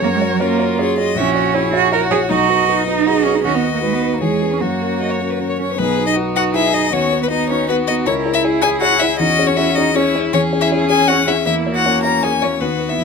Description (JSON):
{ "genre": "quick classical-period movement for piano quintet", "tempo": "158 BPM", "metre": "3/4", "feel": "straight", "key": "B major", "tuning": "A4 = 439 Hz", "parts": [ { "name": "clear violin", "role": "melody", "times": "0.0-13.0 s", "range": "A#4 to A#5", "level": "-19 LUFS", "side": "left 7 dB", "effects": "none" }, { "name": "dark cello", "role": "second line", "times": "0.0-13.0 s", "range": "F#3 to A#4", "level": "-20 LUFS", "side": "right 9 dB", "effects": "none" }, { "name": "rich violin", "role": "second line", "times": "0.0-13.0 s", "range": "C#4 to D#5", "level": "-24 LUFS", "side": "left 4 dB", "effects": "none" }, { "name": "dark baby grand piano", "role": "accompaniment", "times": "0.0-13.0 s", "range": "A#1 to C#5", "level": "-20 LUFS", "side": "left 2 dB", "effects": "none" }, { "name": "rich viola", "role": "accompaniment", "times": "0.0-13.0 s", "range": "A#3 to C#5", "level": "-23 LUFS", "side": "right 4 dB", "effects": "none" } ], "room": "light reverb", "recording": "close, detailed microphones", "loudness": "-14 LUFS", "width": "side -5 dB against mid", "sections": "0.0-5.8 A section; 5.8-13.0 B section", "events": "none", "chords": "0.0 F#; 1.2 F#7/A#; 2.3 B; 3.4 B/D#; 4.2 C#m7/E; 4.6 F#; 5.8 B; 6.9 B/D#; 8.1 C#m; 9.2 C#m/E; 11.5 F#7/E; 12.6 B/D#" }